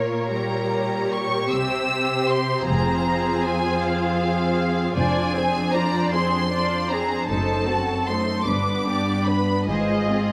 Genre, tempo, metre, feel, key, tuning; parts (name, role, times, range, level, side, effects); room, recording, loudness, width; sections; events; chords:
classical, slow romantic movement for string orchestra; 51 BPM (dotted quarters); 6/8; uneven beats, rubato; F minor; A4 = 440 Hz
warm symphonic violin section; melody; 0.0-10.3 s; Db5 to E6; -28 LUFS; equal
warm symphonic violin section; second line; 0.0-10.3 s; F4 to D5; -29 LUFS; equal
rich symphonic viola section; accompaniment; 0.0-10.3 s; G3 to Ab4; -29 LUFS; equal
rich symphonic cello section; bass; 0.0-10.3 s; F2 to C3; -29 LUFS; equal
warm studio double bass section; bass; 1.5-10.3 s; F1 to C2; -30 LUFS; equal
wet recital hall reverb, RT60 1.5 s; -22 LUFS; mono
0.0-10.3 A section
0.3 Gdim/Bb; 1.5 C; 2.7 Fm; 5.0 Dm7b5/F; 7.3 F#dim7; 8.5 G; 9.7 Fm/Ab